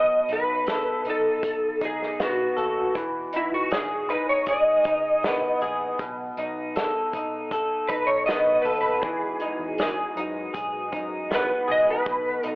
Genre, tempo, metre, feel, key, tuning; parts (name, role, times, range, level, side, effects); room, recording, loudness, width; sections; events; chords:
indie pop, bedroom pop; 79 BPM; 4/4; straight; E major; A4 = 440 Hz
electric slide guitar; melody; 0.0-12.6 s; E4 to D#5; -23 LUFS; equal; ensemble chorus, tape echo
electric guitar through a small old amp; accompaniment; 0.0-12.6 s; B2 to A4; -27 LUFS; equal; analog chorus, warbly pitch drift
vintage muted fingered electric bass; bass; 0.0-12.6 s; E1 to F#2; -47 LUFS; equal
unplugged drum kit; drums; 0.3-12.6 s; hi-hat, kick drum, snare drum; -31 LUFS; equal
string machine, cellos; sustained chords; 9.0-12.6 s; G#3 to A4; -38 LUFS; equal; ensemble chorus
moderate spring reverb, RT60 2.4 s; cassette tape, telephone sound; -22 LUFS; side -22 dB against mid
0.0-12.6 A section
electric slide guitar solo 0.0-12.6
0.0 B7; 3.0 Emaj9; 6.0 B7; 9.0 Emaj9